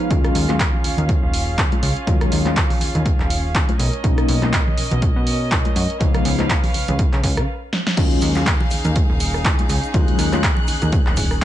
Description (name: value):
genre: filtered disco house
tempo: 122 BPM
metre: 4/4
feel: swing 56% on 16ths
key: Eb minor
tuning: A4 = 440 Hz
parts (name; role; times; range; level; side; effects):
- bell-like tine electric piano; accompaniment; 0.0-10.4 s; F3 to F4; -23 LUFS; left 3 dB; phaser, sidechain pumping, low-pass filter
- rich chamber string section; sustained chords; 0.0-11.4 s; C#4 to Gb6; -27 LUFS; right 1 dB; sidechain pumping, low-pass filter
- punchy analog drum machine; drums; 0.0-11.4 s; crash cymbal, handclaps, hi-hat, rim click, snare drum; -24 LUFS; equal; sidechain pumping on hats, sidechain pumping on cymbals
- egg shaker and congas; percussion; 0.0-11.4 s; none; -29 LUFS; left 2 dB; sidechain pumping on perc, low-pass filter on perc
- plucky analog bass; bass; 0.1-11.4 s; Eb1 to Db3; -22 LUFS; equal; tube saturation, sidechain pumping, low-pass filter
- electronic kick drum; drums; 0.1-11.4 s; none; -19 LUFS; equal; none
room: little or no reverb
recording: nothing above 10.5 kHz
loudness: -16 LUFS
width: side -12 dB against mid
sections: 0.0-8.0 A section; 8.0-11.4 B section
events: stop 7.5-8.0; drum fill 7.7; drop 8.0-11.4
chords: 0.1 Ebm11; 3.8 Bmaj9; 6.0 Db7; 8.0 Ebm11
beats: | 0.11 0.60 1.09 1.58 | 2.07 2.56 3.06 3.55 | 4.04 4.53 5.02 5.51 | 6.01 6.50 6.99 7.48 | 7.97 8.47 8.96 9.45 | 9.94 10.43 10.93 11.42